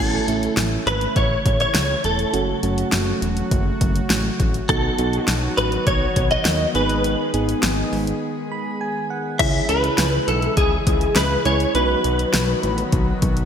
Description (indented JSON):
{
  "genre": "synth-pop",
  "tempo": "102 BPM",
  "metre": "4/4",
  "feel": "straight",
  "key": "C# minor",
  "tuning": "A4 = 440 Hz",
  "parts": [
    { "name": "direct-recorded clean electric guitar", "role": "melody", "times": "0.0-12.9 s", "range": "G#4 to E5", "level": "-22 LUFS", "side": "left 1 dB", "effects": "ensemble chorus, shimmer reverb, ping-pong delay" },
    { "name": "soft electric-piano-like synth keys", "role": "accompaniment", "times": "0.0-12.7 s", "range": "F#3 to B5", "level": "-26 LUFS", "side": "right 5 dB", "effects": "chorus, shimmer reverb" },
    { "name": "warm analog pad", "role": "sustained chords", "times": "0.0-13.5 s", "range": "C#3 to G#4", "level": "-27 LUFS", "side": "equal", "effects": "chorus, shimmer reverb" },
    { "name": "fat analog bass", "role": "bass", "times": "0.0-13.4 s", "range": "E1 to D#2", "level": "-24 LUFS", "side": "equal", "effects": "none" },
    { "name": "deep house drum kit", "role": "drums", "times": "0.3-13.5 s", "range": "crash cymbal, hi-hat, kick drum, snare drum", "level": "-22 LUFS", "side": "equal", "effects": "gated reverb" }
  ],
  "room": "moderate lush hall reverb, RT60 2.3 s",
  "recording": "bright 1980s-style digital production",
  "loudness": "-18 LUFS",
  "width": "side -8 dB against mid",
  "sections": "0.0-9.4 A section; 9.4-13.5 B section",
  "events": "break 8.2-9.4; synth keys fill 8.2-9.4",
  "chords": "0.0 A; 2.3 F#m; 4.7 B; 6.8 G#m; 9.4 C#m; 11.8 B"
}